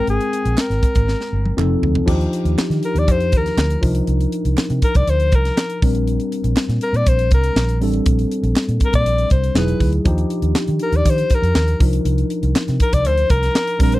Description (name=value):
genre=polished 1980s jazz-funk pop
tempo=120 BPM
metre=4/4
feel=straight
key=unclear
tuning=A4 = 440 Hz
part: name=warm alto saxophone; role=melody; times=0.0-14.0 s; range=Ab4 to D5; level=-20 LUFS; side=left 2 dB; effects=none
part: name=tine electric piano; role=accompaniment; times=0.0-14.0 s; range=F3 to G5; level=-22 LUFS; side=left 1 dB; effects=wide subtle chorus
part: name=vintage muted fingered electric bass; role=bass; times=0.1-14.0 s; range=E1 to Eb3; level=-18 LUFS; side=equal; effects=none
part: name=tight funk drum kit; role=drums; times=0.1-14.0 s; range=crash cymbal, hi-hat, kick drum, snare drum, toms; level=-18 LUFS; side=equal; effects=none
part: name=group handclap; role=percussion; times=0.6-13.7 s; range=none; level=-31 LUFS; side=right 7 dB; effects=none
room=little or no reverb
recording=dry, close 1970s-style studio recording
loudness=-15 LUFS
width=side -17 dB against mid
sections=0.0-2.1 A section; 2.1-14.0 B section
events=drum fill 1.1-2.1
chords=0.0 Abmaj9; 1.6 F7; 2.1 Ebmaj9; 3.8 Cm11; 5.8 Bb69; 9.6 Emaj9; 10.1 Ebmaj9; 11.8 Cm11